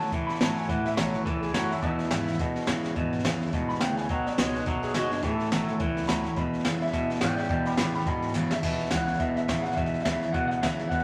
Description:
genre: rockabilly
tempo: 212 BPM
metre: 4/4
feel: swing 58% on 8ths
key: E mixolydian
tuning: A4 = 440 Hz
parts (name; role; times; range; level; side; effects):
- electric guitar through a small old amp; melody; 0.0-11.0 s; D4 to B5; -34 LUFS; equal; spring reverb
- picked steel-string acoustic guitar; accompaniment; 0.0-11.0 s; E2 to F#4; -34 LUFS; equal; none
- twangy electric guitar; riff; 0.0-11.0 s; E2 to G#3; -33 LUFS; equal; none
- upright bass; bass; 0.0-11.0 s; F#1 to B2; -42 LUFS; equal; none
- jazz brush drum kit; drums; 0.0-11.0 s; crash cymbal, hi-hat, kick drum, snare drum; -33 LUFS; equal; none
room: moderate large studio reverb, RT60 1.0 s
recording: vinyl crackle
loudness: -27 LUFS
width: mono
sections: 0.0-8.6 A section; 8.6-11.0 B section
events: clean electric guitar solo 0.0-8.6; drum fill 8.3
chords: 0.0 A; 1.8 E; 4.1 B; 5.2 A; 6.4 E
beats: 0.12 0.40 | 0.69 0.97 1.26 1.54 | 1.82 2.11 2.39 2.67 | 2.96 3.24 3.53 3.81 | 4.09 4.38 4.66 4.94 | 5.23 5.51 5.79 6.08 | 6.36 6.65 6.93 7.21 | 7.50 7.78 8.06 8.35 | 8.63 8.92 9.20 9.48 | 9.77 10.05 10.34 10.62 | 10.90

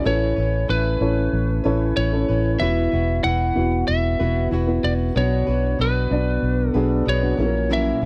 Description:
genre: pop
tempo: 94 BPM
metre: 4/4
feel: straight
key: unclear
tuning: A4 = 444 Hz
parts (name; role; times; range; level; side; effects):
- lightly driven lead guitar; melody; 0.0-8.1 s; B4 to F#5; -27 LUFS; equal; none
- dark upright piano; accompaniment; 0.0-8.1 s; A2 to D5; -26 LUFS; equal; none
- fingerpicked plugged-in steel-string acoustic guitar; riff; 0.0-8.1 s; A#2 to B4; -30 LUFS; equal; none
- vintage muted fingered electric bass; bass; 0.1-8.1 s; E1 to B1; -24 LUFS; equal; none
room: small room ambience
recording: dry, close 1970s-style studio recording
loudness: -21 LUFS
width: mono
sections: 0.0-8.1 A section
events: none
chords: 0.1 Aadd9; 2.6 Esus2; 5.2 Bm; 7.4 F#7/A#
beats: | 0.05 0.69 1.33 1.97 | 2.60 3.24 3.88 4.52 | 5.16 5.79 6.43 7.07 | 7.71

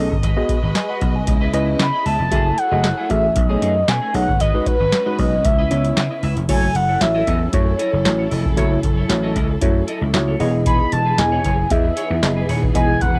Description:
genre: early-eighties boogie funk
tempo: 115 BPM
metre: 4/4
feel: straight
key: F# dorian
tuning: A4 = 440 Hz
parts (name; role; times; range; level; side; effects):
- tine electric piano; accompaniment; 0.0-13.0 s; G#3 to B5; -25 LUFS; equal; none
- warm studio string section; sustained chords; 0.0-13.2 s; C#3 to D#5; -32 LUFS; equal; none
- clean electric guitar; riff; 0.0-13.2 s; A3 to E5; -32 LUFS; equal; analog chorus
- vintage slap bass; bass; 0.0-13.2 s; D#1 to C#3; -23 LUFS; equal; none
- booming analog drum machine; drums; 0.1-13.2 s; crash cymbal, handclaps, hi-hat, kick drum, snare drum; -22 LUFS; equal; cassette tape
- mellow horn-like synth lead; melody; 1.8-13.2 s; B4 to B5; -23 LUFS; equal; chorus, cassette tape
room: little or no reverb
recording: home recording on cassette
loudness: -18 LUFS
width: mono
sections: 0.0-6.5 A section; 6.5-13.2 B section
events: none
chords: 0.2 G#m7; 1.3 C#m9; 2.3 F#m9; 3.4 B13; 4.4 G#m7; 5.4 C#m9; 6.5 F#m7; 10.4 Emaj7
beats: | 0.23 0.75 1.27 1.79 | 2.32 2.84 3.36 3.88 | 4.40 4.92 5.45 5.97 | 6.49 7.01 7.53 8.06 | 8.58 9.10 9.62 10.14 | 10.66 11.19 11.71 12.23 | 12.75

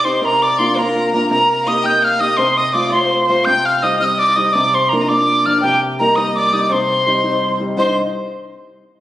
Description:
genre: celtic folk, Celtic jig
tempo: 111 BPM (dotted quarters)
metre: 6/8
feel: straight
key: C dorian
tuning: A4 = 440 Hz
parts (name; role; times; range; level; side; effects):
- mellow tin whistle; melody; 0.0-8.0 s; G5 to G6; -15 LUFS; equal; none
- clear fiddle; second line; 0.0-8.0 s; G4 to G5; -21 LUFS; left 2 dB; none
- warm grand piano; accompaniment; 0.0-8.0 s; C2 to Eb5; -20 LUFS; equal; none
room: wet recital hall reverb, RT60 1.6 s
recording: recorded on a phone in the room, studio reverb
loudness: -13 LUFS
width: side -14 dB against mid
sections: 0.0-7.8 A section; 7.8-8.9 B section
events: none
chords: 0.2 Bb/C; 1.3 Eb/C; 2.4 F/C; 3.5 Cm; 4.5 Bb/C; 5.6 Eb/C; 6.7 Cm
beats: | 0.22 0.76 | 1.30 1.84 | 2.38 2.92 | 3.46 4.00 | 4.54 5.08 | 5.62 6.16 | 6.70 7.24 | 7.78

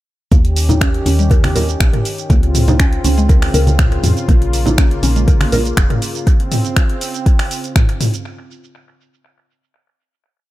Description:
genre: afro house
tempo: 121 BPM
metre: 4/4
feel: straight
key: Bb dorian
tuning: A4 = 440 Hz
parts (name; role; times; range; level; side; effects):
- warm analog pad; sustained chords; 0.3-8.2 s; Db3 to G4; -23 LUFS; equal; chorus, sidechain pumping
- mallet-like synth pluck; arpeggios; 0.3-5.6 s; G3 to Bb4; -22 LUFS; equal; lush chorus, sidechain pumping, analog delay
- woody FM bass; bass; 0.3-5.9 s; F1 to F2; -16 LUFS; equal; sidechain pumping
- deep house drum kit; drums; 0.3-8.2 s; finger snaps, hi-hat, shaker, toms; -20 LUFS; equal; analog delay
- electronic kick drum; drums; 0.3-7.9 s; none; -12 LUFS; equal; none
- congas; percussion; 0.3-5.6 s; none; -20 LUFS; right 1 dB; none
room: digital ambience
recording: echo-heavy mix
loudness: -12 LUFS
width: side -16 dB against mid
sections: 0.3-8.3 drop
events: drop 0.3-8.3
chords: 0.3 Eb7; 2.3 Dbmaj7; 4.3 Bbm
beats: | 0.32 0.81 1.31 1.81 | 2.30 2.80 3.29 3.79 | 4.29 4.78 5.28 5.77 | 6.27 6.76 7.26 7.76

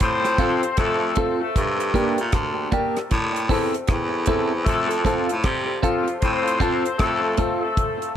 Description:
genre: dub reggae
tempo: 77 BPM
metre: 4/4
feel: swing 63% on 16ths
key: unclear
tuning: A4 = 442 Hz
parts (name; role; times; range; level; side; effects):
- mellow horn section; second line; 0.0-7.6 s; F3 to C5; -25 LUFS; left 3 dB; dub echo
- raspy baritone saxophone; bass; 0.0-7.4 s; D2 to C3; -24 LUFS; equal; none
- deep reggae drum kit; drums; 0.0-8.2 s; hi-hat, kick drum, rim click; -24 LUFS; equal; none
- clean electric guitar; accompaniment; 0.4-7.6 s; Bb3 to A4; -28 LUFS; right 6 dB; phaser, dub echo
- clear upright piano; stabs; 0.4-7.6 s; C4 to Bb4; -27 LUFS; left 4 dB; dub echo
room: moderate spring reverb, RT60 2.5 s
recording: echo-heavy mix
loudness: -19 LUFS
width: side -10 dB against mid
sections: 0.0-8.2 A section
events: none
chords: 0.0 F; 1.6 Gm; 3.1 Am; 4.7 F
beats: 0.00 0.78 | 1.55 2.33 3.11 3.88 | 4.66 5.44 6.22 6.99 | 7.77

